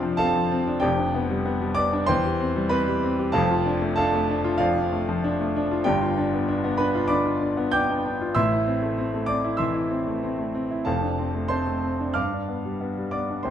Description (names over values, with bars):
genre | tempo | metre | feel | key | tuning
classical, virtuoso piano study | 95 BPM | 4/4 | rubato | unclear | A4 = 440 Hz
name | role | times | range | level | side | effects
warm concert grand piano | solo | 0.0-13.5 s | F1 to G6 | -22 LUFS | equal | none
room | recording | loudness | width
moderate recital hall reverb, RT60 1.6 s | close, detailed microphones | -22 LUFS | side -9 dB against mid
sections
0.0-13.5 A section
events
none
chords
0.0 F6; 0.8 G7/F; 2.1 C/E; 3.4 Dm/F; 5.9 G7; 8.4 Am; 10.9 Dm7/F; 12.2 G7